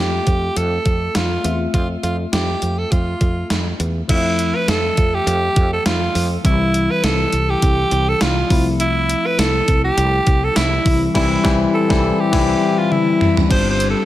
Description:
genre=1980s-style pop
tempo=102 BPM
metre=4/4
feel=swing 55% on 16ths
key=unclear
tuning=A4 = 441 Hz
part: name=raspy alto saxophone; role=melody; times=0.0-14.1 s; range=E4 to C5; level=-20 LUFS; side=right 2 dB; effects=none
part: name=tine electric piano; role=accompaniment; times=0.0-14.1 s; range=E3 to E5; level=-21 LUFS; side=left 4 dB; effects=none
part: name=woody fretless electric bass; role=bass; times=0.0-13.9 s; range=G1 to F2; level=-21 LUFS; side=equal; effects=none
part: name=gated 80s digital drum machine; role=drums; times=0.3-14.0 s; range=crash cymbal, hi-hat, kick drum, snare drum, tambourine, toms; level=-19 LUFS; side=equal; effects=gated reverb, gated reverb snare, overdrive
part: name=raw garage guitar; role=accompaniment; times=13.5-14.1 s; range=G3 to G4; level=-28 LUFS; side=right 1 dB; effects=overdrive, analog chorus
room=light reverb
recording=none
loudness=-15 LUFS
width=side -14 dB against mid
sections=0.0-4.1 A section; 4.1-13.5 B section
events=band accent 11.2-13.5; drum fill 12.9-13.5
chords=0.0 Fmaj7; 6.4 C; 8.5 Fmaj7/C; 10.9 C; 13.5 G7sus4

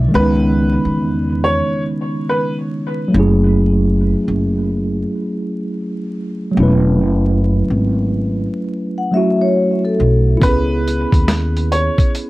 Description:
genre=lo-fi hip hop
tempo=70 BPM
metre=4/4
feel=swing 65% on 16ths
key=unclear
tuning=A4 = 440 Hz
part: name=mellow tine electric piano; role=accompaniment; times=0.0-12.3 s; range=D#3 to B4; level=-17 LUFS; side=right 1 dB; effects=medium stereo tremolo, cassette tape
part: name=upright bass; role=bass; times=0.0-11.9 s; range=E1 to E2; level=-16 LUFS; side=equal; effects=none
part: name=warm upright piano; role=melody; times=0.2-2.5, 10.4-12.1 s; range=B4 to C#5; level=-21 LUFS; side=equal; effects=analog delay
part: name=vibraphone with soft mallets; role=second line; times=9.0-10.4 s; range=A4 to F#5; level=-19 LUFS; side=left 3 dB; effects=analog delay
part: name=dusty soul sampler-style drum kit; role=drums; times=10.4-12.3 s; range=hi-hat, kick drum, snare drum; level=-15 LUFS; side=equal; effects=none
room=moderate small room reverb, RT60 0.5 s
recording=vinyl crackle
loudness=-14 LUFS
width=side -19 dB against mid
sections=0.0-12.3 A section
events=none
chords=0.0 C#m9; 3.1 F#m7; 10.4 C#m7

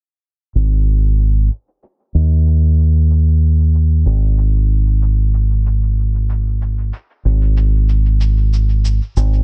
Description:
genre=ambient dub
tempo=94 BPM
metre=4/4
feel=swing 54% on 16ths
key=unclear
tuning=A4 = 440 Hz
part: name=deep dub fingered electric bass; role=bass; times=0.6-9.4 s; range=G#1 to D#2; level=-15 LUFS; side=equal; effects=tube saturation
part: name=cabasa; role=drums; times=0.6-9.3 s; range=none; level=-41 LUFS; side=equal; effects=dub echo
room=little or no reverb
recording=echo-heavy mix, low-pass filter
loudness=-15 LUFS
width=mono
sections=0.6-9.4 A section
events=filter sweep 0.6-9.4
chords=none

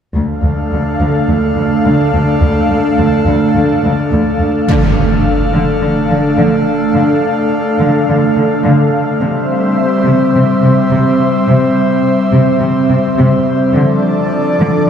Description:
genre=cinematic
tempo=106 BPM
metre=4/4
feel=straight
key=D minor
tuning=A4 = 440 Hz
part: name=airy breathy pad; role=sustained chords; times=0.2-14.9 s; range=F3 to F5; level=-12 LUFS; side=equal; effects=chorus
part: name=warm symphonic cello section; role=bass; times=0.2-14.9 s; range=D2 to D3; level=-15 LUFS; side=equal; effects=none
part: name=impact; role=sound effects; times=4.7-7.0 s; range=none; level=-16 LUFS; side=equal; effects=none
room=wet scoring stage reverb, RT60 1.9 s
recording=heard from further back in the room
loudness=-10 LUFS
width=side -8 dB against mid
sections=0.2-4.7 A section; 4.7-14.9 B section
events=build-up 4.7-14.9; impact 4.7-7.0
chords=0.2 Dm; 9.2 C; 13.7 Dm

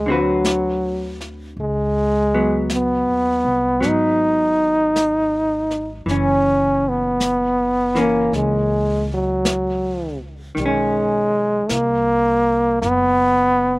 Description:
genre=jazz ballad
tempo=53 BPM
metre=4/4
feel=swing 68% on 8ths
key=unclear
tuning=A4 = 440 Hz
part: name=bright trombone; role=melody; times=0.0-13.8 s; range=F#3 to D#4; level=-17 LUFS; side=equal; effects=none
part: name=upright bass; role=bass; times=0.0-13.8 s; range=F#1 to D2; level=-27 LUFS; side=equal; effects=none
part: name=vintage hollow-body jazz guitar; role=accompaniment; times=0.1-13.8 s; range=D3 to B4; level=-24 LUFS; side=left 1 dB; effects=none
part: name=vintage brush drum kit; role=drums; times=0.4-13.8 s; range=brushed snare drum, hi-hat, snare drum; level=-26 LUFS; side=equal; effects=none
room=little or no reverb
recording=recorded outdoors, with no room sound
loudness=-16 LUFS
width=side -22 dB against mid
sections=0.0-13.8 A section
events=none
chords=0.0 D6; 1.6 C#9sus4; 6.1 F#7; 10.6 B69

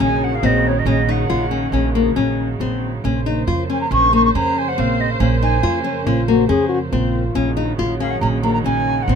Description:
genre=contemporary instrumental, chamber music in an uneven meter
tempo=139 BPM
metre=5/4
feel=straight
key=Bb minor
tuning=A4 = 435 Hz
part: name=wooden flute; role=melody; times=0.0-9.2 s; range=Db5 to Db6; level=-20 LUFS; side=right 2 dB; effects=none
part: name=warm studio string section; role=sustained chords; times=0.0-9.2 s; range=Db3 to C5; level=-25 LUFS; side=right 3 dB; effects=none
part: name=nylon-string guitar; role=arpeggios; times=0.0-9.2 s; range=Bb3 to F4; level=-20 LUFS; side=left 7 dB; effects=none
part: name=upright bass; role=bass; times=0.0-9.2 s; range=Bb1 to F2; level=-20 LUFS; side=right 3 dB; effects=none
part: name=warm French horn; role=second line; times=5.8-7.7 s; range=Db4 to Ab4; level=-23 LUFS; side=left 4 dB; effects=none
room=light reverb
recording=minimal, uncompressed stereo recording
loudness=-16 LUFS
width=side -7 dB against mid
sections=0.0-9.2 A section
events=none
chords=0.0 Ebm7/Bb; 3.0 Bbmadd9; 7.3 Ebm7/Bb

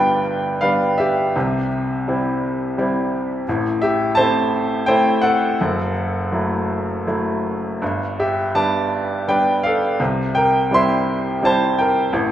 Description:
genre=classical, lyrical solo piano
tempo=84 BPM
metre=3/4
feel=uneven beats, rubato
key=unclear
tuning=A4 = 441 Hz
part: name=bright baby grand piano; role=solo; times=0.0-12.3 s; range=F#1 to C6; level=-17 LUFS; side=equal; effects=none
room=wet recital hall reverb, RT60 1.5 s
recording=recorded in a church or concert hall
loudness=-17 LUFS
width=side -11 dB against mid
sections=0.0-12.3 A section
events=none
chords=0.0 G; 1.4 C; 3.5 Am; 5.6 F#m7; 7.8 G; 10.0 C

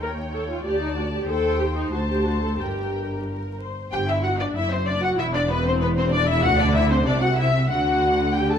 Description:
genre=quick classical-period movement for string orchestra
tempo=89-97 BPM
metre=2/4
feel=rubato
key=G minor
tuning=A4 = 439 Hz
part: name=muted studio violin section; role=melody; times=0.0-8.6 s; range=Bb4 to A5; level=-26 LUFS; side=left 4 dB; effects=none
part: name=muted studio violin section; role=second line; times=0.0-8.6 s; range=Bb4 to A5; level=-29 LUFS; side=left 3 dB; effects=none
part: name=muted studio viola section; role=accompaniment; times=0.0-8.6 s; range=B3 to Bb4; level=-26 LUFS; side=equal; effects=none
part: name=muted studio cello section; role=bass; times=0.0-8.6 s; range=D2 to D3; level=-27 LUFS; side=equal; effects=none
part: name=muted studio double bass section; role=bass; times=0.0-8.6 s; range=E1 to Eb2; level=-26 LUFS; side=right 1 dB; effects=none
room=light reverb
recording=close, detailed microphones, vinyl crackle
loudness=-20 LUFS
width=side -8 dB against mid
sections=0.0-3.9 A section; 3.9-8.6 A section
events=none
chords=0.0 Eb7; 0.6 D5; 1.3 Cm/Eb; 1.9 D5; 2.6 Gm; 3.9 Em9; 5.2 Cmaj9/E; 6.4 D9; 7.1 D9/C; 7.7 D

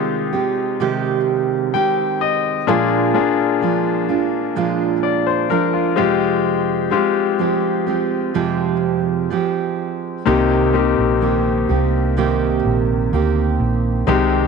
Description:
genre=pop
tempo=63 BPM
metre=4/4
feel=straight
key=C minor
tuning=A4 = 436 Hz
part: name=bright grand piano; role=accompaniment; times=0.0-14.5 s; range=Bb2 to G5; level=-19 LUFS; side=left 11 dB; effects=none
part: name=fingerpicked steel-string acoustic guitar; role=arpeggios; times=0.0-14.5 s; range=F2 to G4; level=-19 LUFS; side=right 10 dB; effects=none
part: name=woody fretless electric bass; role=bass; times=10.3-14.5 s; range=Bb1 to D2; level=-20 LUFS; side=equal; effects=lush chorus
room=light reverb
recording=1960s-style stereo with parts hard left and right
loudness=-16 LUFS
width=side -5 dB against mid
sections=0.0-14.5 A section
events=grand piano fill 1.3-2.7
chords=0.0 Abmaj7/C; 2.7 Bb7; 6.0 Fmadd9; 10.3 Cm7

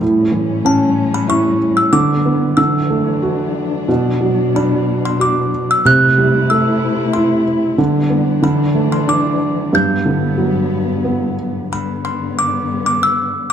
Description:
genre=children's music, lullaby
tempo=93 BPM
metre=3/4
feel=rubato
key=G major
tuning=A4 = 440 Hz
part: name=felt-muted upright piano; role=accompaniment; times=0.0-11.7 s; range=G2 to F#4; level=-15 LUFS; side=right 2 dB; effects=none
part: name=dark studio string section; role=sustained chords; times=0.0-13.5 s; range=G2 to E4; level=-20 LUFS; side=left 4 dB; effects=none
part: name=music box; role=melody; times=0.7-13.5 s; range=A5 to G6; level=-18 LUFS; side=equal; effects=none
room=wet recital hall reverb, RT60 1.6 s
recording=dark, warm production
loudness=-13 LUFS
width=side -8 dB against mid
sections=0.0-11.7 A section; 11.7-13.5 B section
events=none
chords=0.0 A7; 1.9 G/D; 2.6 Dadd9; 3.9 Bm; 5.9 C6; 7.8 G/D; 8.4 Dadd9; 9.7 Gmaj7; 11.7 G

